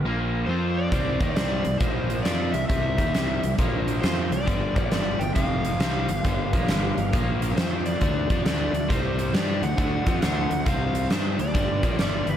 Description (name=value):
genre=blues rock power trio and southern rock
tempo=135 BPM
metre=4/4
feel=swing 64% on 8ths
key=unclear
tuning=A4 = 440 Hz
part: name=overdriven tonewheel organ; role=sustained chords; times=0.0-12.4 s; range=G3 to Eb5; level=-40 LUFS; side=right 2 dB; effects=none
part: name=fuzz fingered electric bass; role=bass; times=0.0-12.4 s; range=F1 to G2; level=-28 LUFS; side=equal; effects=overdrive
part: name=overdriven electric guitar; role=riff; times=0.1-12.4 s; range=F2 to G4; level=-28 LUFS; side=equal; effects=none
part: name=overdriven slide guitar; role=melody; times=0.5-12.4 s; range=B4 to G5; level=-30 LUFS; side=left 1 dB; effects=none
part: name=huge arena drum kit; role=drums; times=0.9-12.3 s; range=hi-hat, kick drum, snare drum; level=-25 LUFS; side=equal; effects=none
room=moderate lush hall reverb, RT60 1.9 s, small room ambience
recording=big arena sound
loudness=-22 LUFS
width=side -10 dB against mid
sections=0.0-12.4 A section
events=none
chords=0.0 Bb5; 0.5 F5; 0.9 C7; 1.8 Bb5; 2.3 C7; 3.6 Bb5; 4.0 C7; 4.5 G7; 5.4 F5; 5.8 G7; 7.1 Bb5; 7.6 F5; 8.0 D7; 8.9 C5; 9.3 D7; 10.7 C5; 11.1 D7; 11.5 G7